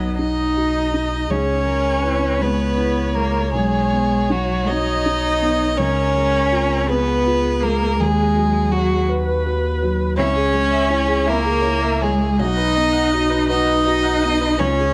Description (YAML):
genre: neoclassical piano and strings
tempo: 54 BPM (dotted quarters)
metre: 6/8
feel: rubato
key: B major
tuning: A4 = 439 Hz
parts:
  - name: rich violin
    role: melody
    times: 0.0-14.9 s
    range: F#4 to D#5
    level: -24 LUFS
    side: equal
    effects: none
  - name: warm cello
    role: second line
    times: 0.0-14.9 s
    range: F#3 to D#4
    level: -23 LUFS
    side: equal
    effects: cassette tape
  - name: felt-muted upright piano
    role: accompaniment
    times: 0.0-14.9 s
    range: B1 to E5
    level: -26 LUFS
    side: equal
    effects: cassette tape
  - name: rich viola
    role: accompaniment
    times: 0.0-14.9 s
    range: F#3 to F#5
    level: -29 LUFS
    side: equal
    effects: cassette tape
  - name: sub bass with octave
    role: bass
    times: 0.0-14.9 s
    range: B1 to D#2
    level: -27 LUFS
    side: equal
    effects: none
room: moderate spring reverb, RT60 2.4 s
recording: home recording on cassette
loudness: -19 LUFS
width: mono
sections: 0.0-1.3 A section; 1.3-14.9 B section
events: none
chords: 0.0 B; 1.3 C#m; 3.5 B; 5.8 C#7; 8.0 B/D#; 10.2 C#m; 12.4 B